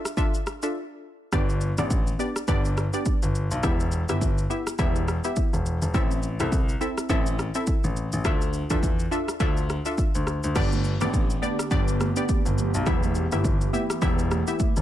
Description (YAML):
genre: afrobeats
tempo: 104 BPM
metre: 4/4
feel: swing 58% on 16ths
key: unclear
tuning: A4 = 440 Hz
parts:
  - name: glassy wavetable pluck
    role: accompaniment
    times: 0.0-14.7 s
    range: B3 to E5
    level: -29 LUFS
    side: left 1 dB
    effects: chorus
  - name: deep house drum kit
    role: drums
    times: 0.1-14.8 s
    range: crash cymbal, kick drum, rim click, shaker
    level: -26 LUFS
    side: equal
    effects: none
  - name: warm baby grand piano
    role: bass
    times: 1.3-14.8 s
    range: E1 to E2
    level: -26 LUFS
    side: left 1 dB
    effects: none
  - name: airy breathy pad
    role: sustained chords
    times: 10.6-14.8 s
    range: D3 to G4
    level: -32 LUFS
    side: equal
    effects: chorus
  - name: congas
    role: percussion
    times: 10.6-14.8 s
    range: none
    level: -34 LUFS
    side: right 10 dB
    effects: none
room: little or no reverb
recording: none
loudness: -22 LUFS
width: side -12 dB against mid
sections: 0.0-10.6 A section; 10.6-14.8 B section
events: break 0.8-1.3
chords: 0.0 Dmadd9; 1.3 G; 3.6 Em; 5.9 Am; 8.3 Dmadd9; 10.6 G; 12.9 Em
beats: 0.17 0.75 | 1.33 1.91 2.48 3.06 | 3.63 4.21 4.79 5.37 | 5.94 6.52 7.10 7.67 | 8.25 8.83 9.40 9.98 | 10.56 11.13 11.71 12.29 | 12.87 13.44 14.02 14.60